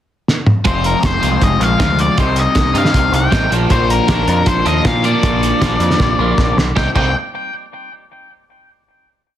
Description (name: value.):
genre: indie rock.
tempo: 157 BPM.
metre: 4/4.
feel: straight.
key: C minor.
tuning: A4 = 440 Hz.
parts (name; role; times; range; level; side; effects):
cloth-damped thuddy drum kit; drums; 0.3-7.0 s; crash cymbal, hi-hat, kick drum, snare drum, toms; -17 LUFS; right 1 dB; none.
raw garage guitar; riff; 0.6-7.1 s; F2 to Eb4; -21 LUFS; left 8 dB; overdrive, phaser.
twelve-string electric guitar; riff; 0.6-7.1 s; F3 to F4; -20 LUFS; right 8 dB; analog chorus, analog delay.
octave-fuzz lead guitar; melody; 0.7-7.1 s; Bb4 to G5; -18 LUFS; left 4 dB; distortion, analog delay.
growling picked electric bass; bass; 0.7-7.1 s; F1 to Bb2; -18 LUFS; equal; overdrive.
room: light reverb, studio reverb.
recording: dense, heavily limited modern master.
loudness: -12 LUFS.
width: side -11 dB against mid.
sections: 0.0-0.7 pickup bar; 0.7-6.8 pre-chorus; 6.8-8.3 final chord.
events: drum fill 0.3-0.7, 6.0-6.8.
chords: 0.0 N.C.; 0.7 Fm; 2.2 Cm; 3.5 Bb; 6.8 Cm.